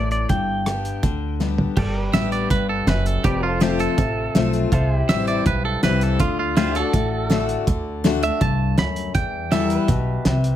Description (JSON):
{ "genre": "honky-tonk and classic country", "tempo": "163 BPM", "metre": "4/4", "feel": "straight", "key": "G major", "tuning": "A4 = 439 Hz", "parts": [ { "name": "pedal steel guitar", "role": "melody", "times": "0.0-1.4 s", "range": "D5 to G5", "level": "-26 LUFS", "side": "right 1 dB", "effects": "none" }, { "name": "picked steel-string acoustic guitar", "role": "accompaniment", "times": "0.0-10.6 s", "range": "E2 to G4", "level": "-24 LUFS", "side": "left 7 dB", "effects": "none" }, { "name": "upright bass", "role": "bass", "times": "0.0-10.6 s", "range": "F1 to E2", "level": "-24 LUFS", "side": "right 1 dB", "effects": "none" }, { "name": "cloth-damped thuddy drum kit", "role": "drums", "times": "0.1-10.5 s", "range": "crash cymbal, hi-hat, kick drum, rim click, snare drum, toms", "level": "-22 LUFS", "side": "right 1 dB", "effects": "none" }, { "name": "pedal steel guitar", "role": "sustained chords", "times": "1.8-10.6 s", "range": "E4 to E5", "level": "-30 LUFS", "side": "right 4 dB", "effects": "none" }, { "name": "twangy electric guitar", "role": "second line", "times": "2.1-9.9 s", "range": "F4 to B5", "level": "-25 LUFS", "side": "right 5 dB", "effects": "tape echo" } ], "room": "light reverb", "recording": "close, detailed microphones", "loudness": "-18 LUFS", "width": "side -11 dB against mid", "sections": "0.0-1.8 A section; 1.8-10.6 B section", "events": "drum fill 1.4-1.8; clean electric guitar solo 1.8-10.6", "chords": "0.3 G; 3.2 F; 4.7 C; 6.2 D; 9.1 Em", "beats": "| 0.29 0.66 1.03 1.40 | 1.77 2.14 2.51 2.88 | 3.24 3.61 3.98 4.35 | 4.72 5.09 5.46 5.83 | 6.20 6.57 6.93 7.30 | 7.67 8.04 8.41 8.78 | 9.15 9.52 9.89 10.26" }